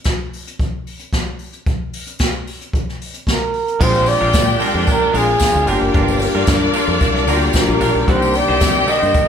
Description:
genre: disco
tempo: 112 BPM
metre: 4/4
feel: straight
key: unclear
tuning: A4 = 436 Hz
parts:
  - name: jazz brush drum kit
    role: drums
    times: 0.0-9.3 s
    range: crash cymbal, hi-hat, kick drum, snare drum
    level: -20 LUFS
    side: equal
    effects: none
  - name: breathy flugelhorn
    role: melody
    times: 3.3-9.3 s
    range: G4 to Eb5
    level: -18 LUFS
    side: right 2 dB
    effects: none
  - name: rich studio string section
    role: second line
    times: 3.8-9.3 s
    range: D4 to G5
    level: -20 LUFS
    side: left 4 dB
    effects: none
  - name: semi-hollow electric guitar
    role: accompaniment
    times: 3.8-9.2 s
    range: Ab3 to C5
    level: -25 LUFS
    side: right 4 dB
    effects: none
  - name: warm baby grand piano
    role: accompaniment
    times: 3.8-9.3 s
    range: Ab3 to G4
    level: -24 LUFS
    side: left 4 dB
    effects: none
  - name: clear studio string section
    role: sustained chords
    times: 3.8-9.3 s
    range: C3 to Bb4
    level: -22 LUFS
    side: equal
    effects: none
  - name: modern bright fingered electric bass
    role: bass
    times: 3.8-9.1 s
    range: Gb1 to C3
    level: -20 LUFS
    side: equal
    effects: none
  - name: tambourine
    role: percussion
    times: 3.9-9.3 s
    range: none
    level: -32 LUFS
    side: left 7 dB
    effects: none
room: moderate large studio reverb, RT60 1.3 s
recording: band playing live in one room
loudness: -14 LUFS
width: side -8 dB against mid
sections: 0.0-3.8 A section; 3.8-9.3 B section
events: none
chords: 0.0 N.C.; 3.8 Bb7; 5.7 Gm7; 8.1 Cm7

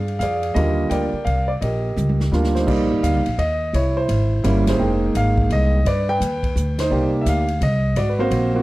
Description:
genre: jazz piano trio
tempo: 170 BPM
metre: 3/4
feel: swing 64% on 8ths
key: unclear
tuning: A4 = 442 Hz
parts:
  - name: warm concert grand piano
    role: melody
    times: 0.0-8.6 s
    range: D3 to G5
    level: -20 LUFS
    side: right 1 dB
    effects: slapback echo
  - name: upright bass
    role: bass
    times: 0.0-8.6 s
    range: F1 to G2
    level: -20 LUFS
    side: equal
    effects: none
  - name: swinging big-band drum kit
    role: drums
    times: 0.1-8.4 s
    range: crash cymbal, hi-hat, kick drum, ride cymbal, snare drum, toms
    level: -29 LUFS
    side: equal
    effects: none
room: little or no reverb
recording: dry, close 1970s-style studio recording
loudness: -17 LUFS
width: side -18 dB against mid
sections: 0.0-2.7 A section; 2.7-8.6 B section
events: drum fill 2.0-2.7, 6.6-6.9; band accent 4.6, 6.7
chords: 0.0 Bb7 (rootless); 0.6 Ebmaj9; 2.7 Cm9; 3.7 C7b9; 4.8 Fm11; 5.9 G; 6.9 Cm9; 8.0 Ab13

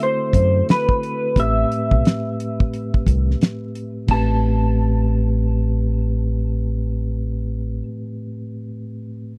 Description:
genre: R&B, neo-soul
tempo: 88 BPM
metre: 4/4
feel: swing 63% on 16ths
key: A dorian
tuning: A4 = 440 Hz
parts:
  - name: electric guitar through a small old amp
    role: melody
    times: 0.0-7.8 s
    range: B4 to A5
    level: -24 LUFS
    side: equal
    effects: analog chorus
  - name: mellow tine electric piano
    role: accompaniment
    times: 0.0-9.3 s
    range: A2 to B4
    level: -27 LUFS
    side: equal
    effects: none
  - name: damped 70s drum kit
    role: drums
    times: 0.0-4.3 s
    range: crash cymbal, hi-hat, kick drum, snare drum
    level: -20 LUFS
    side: equal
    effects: none
  - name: deep dub fingered electric bass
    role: bass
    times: 0.3-7.8 s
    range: A1 to F#2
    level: -22 LUFS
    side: equal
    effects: none
room: little or no reverb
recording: dry, close 1970s-style studio recording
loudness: -20 LUFS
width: mono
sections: 0.0-4.1 A section; 4.1-6.8 B section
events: none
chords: 0.0 D13; 1.4 Am9

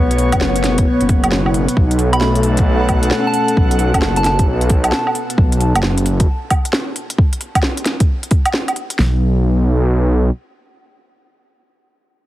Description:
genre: future garage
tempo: 133 BPM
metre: 4/4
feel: swing 64% on 16ths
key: unclear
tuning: A4 = 439 Hz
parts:
  - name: barky tine electric piano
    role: accompaniment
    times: 0.0-4.5 s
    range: A3 to C#4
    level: -22 LUFS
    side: left 4 dB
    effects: sidechain pumping, analog delay
  - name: airy breathy pad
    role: sustained chords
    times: 0.0-5.4 s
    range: B2 to F#5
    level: -22 LUFS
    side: equal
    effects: chorus, sidechain pumping
  - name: swelling detuned saw bass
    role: bass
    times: 0.0-6.3, 9.0-10.3 s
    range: F#1 to B1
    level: -15 LUFS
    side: equal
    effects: sidechain pumping
  - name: organic electronic drum kit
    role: drums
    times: 0.1-9.0 s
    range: hi-hat, snare drum, woodblock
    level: -19 LUFS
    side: right 1 dB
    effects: none
  - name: deep house drum kit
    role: drums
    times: 0.3-9.1 s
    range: kick drum, snare drum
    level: -15 LUFS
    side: equal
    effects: none
  - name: soft synth bell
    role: melody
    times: 2.1-4.3 s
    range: A5 to B5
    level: -22 LUFS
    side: right 1 dB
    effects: chorus, analog delay
room: little or no reverb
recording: heavily compressed radio sound, multiband compression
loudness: -13 LUFS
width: side -15 dB against mid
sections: 0.0-9.0 A section; 9.0-12.3 B section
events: none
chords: 0.0 B5; 9.0 N.C.

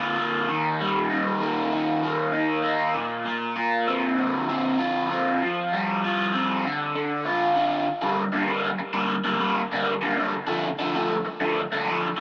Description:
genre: rock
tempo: 98 BPM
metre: 4/4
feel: straight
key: G minor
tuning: A4 = 440 Hz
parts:
  - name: raw garage guitar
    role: solo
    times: 0.0-12.2 s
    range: Bb2 to F4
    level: -22 LUFS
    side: equal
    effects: overdrive, phaser, digital delay
room: wet studio reverb, RT60 0.5 s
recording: rough rehearsal-room recording, warm saturation, small speaker sound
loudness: -22 LUFS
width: side -25 dB against mid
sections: 0.0-7.9 A section; 7.9-12.2 B section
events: none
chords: 0.5 Eb; 2.9 Bbadd9; 5.4 Fsus2; 6.6 Dm; 7.9 Gm; 10.3 Dm

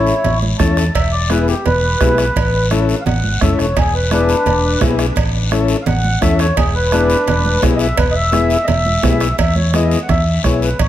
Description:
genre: latin, cumbia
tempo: 171 BPM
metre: 4/4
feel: straight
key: E major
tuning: A4 = 440 Hz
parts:
  - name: mellow accordion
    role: melody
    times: 0.0-10.9 s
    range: D4 to A5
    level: -18 LUFS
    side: equal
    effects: plate reverb, tape echo
  - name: combo organ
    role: accompaniment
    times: 0.0-10.7 s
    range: B3 to A4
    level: -20 LUFS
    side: left 6 dB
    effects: none
  - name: fingered electric bass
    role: bass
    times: 0.0-10.9 s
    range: E1 to E2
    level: -17 LUFS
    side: equal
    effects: none
  - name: guiro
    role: percussion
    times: 0.1-10.9 s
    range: none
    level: -27 LUFS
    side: left 6 dB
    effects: none
  - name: congas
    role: percussion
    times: 0.2-10.9 s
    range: none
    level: -24 LUFS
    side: right 3 dB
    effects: none
  - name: cowbell and timbales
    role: percussion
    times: 0.2-10.9 s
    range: none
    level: -24 LUFS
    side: right 7 dB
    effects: none
  - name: bombo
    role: percussion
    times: 0.6-10.9 s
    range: none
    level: -20 LUFS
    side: right 2 dB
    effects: none
room: moderate large studio reverb, RT60 0.9 s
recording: none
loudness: -12 LUFS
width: side -12 dB against mid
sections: 0.0-9.4 A section; 9.4-10.9 B section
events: accordion solo 0.0-9.4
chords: 0.0 A; 1.0 E; 2.4 A; 3.8 E; 5.2 A; 6.6 E

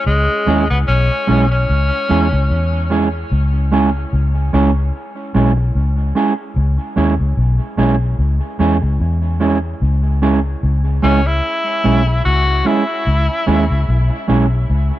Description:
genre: roots reggae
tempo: 74 BPM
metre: 4/4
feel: swing 56% on 16ths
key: C# minor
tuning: A4 = 440 Hz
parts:
  - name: bright tenor saxophone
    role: melody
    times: 0.0-2.9, 11.0-14.3 s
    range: G#3 to F#4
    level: -20 LUFS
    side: left 2 dB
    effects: dub echo
  - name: vintage muted fingered electric bass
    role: bass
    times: 0.1-14.9 s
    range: B1 to E2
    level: -15 LUFS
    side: left 1 dB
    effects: none
  - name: mellow electric guitar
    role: accompaniment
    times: 0.5-14.5 s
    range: G#3 to G#4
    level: -18 LUFS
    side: right 4 dB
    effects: dub echo
room: light reverb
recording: none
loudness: -13 LUFS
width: side -14 dB against mid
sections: 0.0-15.0 A section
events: none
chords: 0.0 C#m

